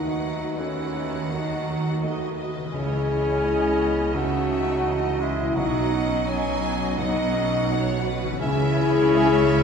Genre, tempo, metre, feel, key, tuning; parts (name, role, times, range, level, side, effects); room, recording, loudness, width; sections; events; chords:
cinematic; 84 BPM; 4/4; rubato; C# minor; A4 = 442 Hz
warm studio violin section; melody; 0.0-9.6 s; D#5 to G#5; -35 LUFS; left 3 dB
mellow clarinet; second line; 0.0-9.6 s; F#3 to E4; -29 LUFS; left 2 dB
mellow cor anglais; second line; 0.0-9.6 s; E3 to C#4; -33 LUFS; right 3 dB
rich studio violin section; second line; 0.0-9.6 s; A4 to E5; -36 LUFS; left 1 dB
silver concert flute; second line; 0.0-9.6 s; C#5 to G#5; -34 LUFS; left 1 dB
dark studio viola section; accompaniment; 0.0-9.6 s; B3 to D#5; -34 LUFS; right 5 dB
felt-muted upright piano; accompaniment; 0.0-9.6 s; B1 to E5; -31 LUFS; right 1 dB
dark French horn section; sustained chords; 0.0-9.6 s; C#4 to G#4; -26 LUFS; left 3 dB
concert harp; arpeggios; 0.0-9.6 s; B2 to F#5; -35 LUFS; left 4 dB
rich studio cello section; bass; 0.0-9.6 s; B2 to D#3; -31 LUFS; right 3 dB
rich studio double bass section; bass; 0.0-9.6 s; B1 to D#2; -31 LUFS; right 2 dB
wet scoring stage reverb, RT60 1.6 s; heard from further back in the room; -21 LUFS; side -6 dB against mid
0.0-9.6 A section
0.0 D#dim; 2.7 C#madd9; 5.6 Badd9; 8.4 C#m